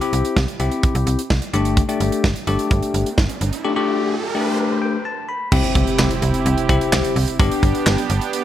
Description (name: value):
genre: synth-pop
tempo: 128 BPM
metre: 4/4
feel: straight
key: C major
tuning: A4 = 440 Hz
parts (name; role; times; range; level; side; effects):
- barky tine electric piano; accompaniment; 0.0-8.0 s; A3 to B5; -21 LUFS; left 4 dB; phaser
- modern studio drum kit; drums; 0.0-8.4 s; crash cymbal, handclaps, hi-hat, kick drum, snare drum; -20 LUFS; right 1 dB; none
- slap-like FM bass; bass; 0.1-8.2 s; G1 to C2; -20 LUFS; right 1 dB; none
- riser and impact; sound effects; 2.9-7.4 s; none; -28 LUFS; right 2 dB; none
- brassy analog pad; sustained chords; 5.5-8.4 s; C3 to G4; -23 LUFS; right 4 dB; chorus
room: light reverb, small room ambience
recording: none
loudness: -17 LUFS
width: side -12 dB against mid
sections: 0.0-5.5 A section; 5.5-8.4 B section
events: riser 2.9-5.5; tine electric piano fill 4.6-5.5; impact 5.5-7.4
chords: 0.0 C; 1.5 Gsus2; 5.5 C; 7.4 G